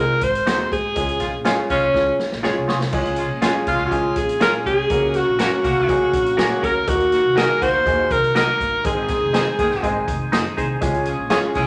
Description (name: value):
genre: uptempo 1960s-style soul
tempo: 122 BPM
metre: 4/4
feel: straight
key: Db major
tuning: A4 = 440 Hz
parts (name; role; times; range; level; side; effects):
- breathy alto saxophone; melody; 0.0-11.7 s; Db4 to C5; -21 LUFS; equal; none
- clear grand piano; accompaniment; 0.0-11.6 s; Ab3 to Eb5; -28 LUFS; equal; none
- upright bass; bass; 0.0-11.6 s; F1 to Ab2; -31 LUFS; equal; none
- swinging big-band drum kit; drums; 0.2-11.7 s; crash cymbal, hi-hat, kick drum, snare drum; -28 LUFS; equal; none
- clean electric guitar; stabs; 0.5-11.4 s; Eb4 to Eb5; -28 LUFS; equal; phaser
- edgy saxophone section; second line; 1.2-11.7 s; Db3 to Ab4; -28 LUFS; equal; none
- overdriven tonewheel organ; sustained chords; 2.9-11.7 s; Db3 to Ab4; -33 LUFS; equal; slow rotary speaker
room: wet large studio reverb, RT60 0.9 s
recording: none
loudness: -19 LUFS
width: mono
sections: 0.0-2.9 A section; 2.9-11.7 A section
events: drum fill 1.9-2.9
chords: 0.0 Ab7; 1.0 Db; 4.9 Gb; 6.9 Ebm; 8.8 Ab; 10.8 Db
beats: 0.47 | 0.96 1.45 1.94 2.44 | 2.93 3.42 3.92 4.41 | 4.90 5.39 5.89 6.38 | 6.87 7.37 7.86 8.35 | 8.85 9.34 9.83 10.32 | 10.82 11.31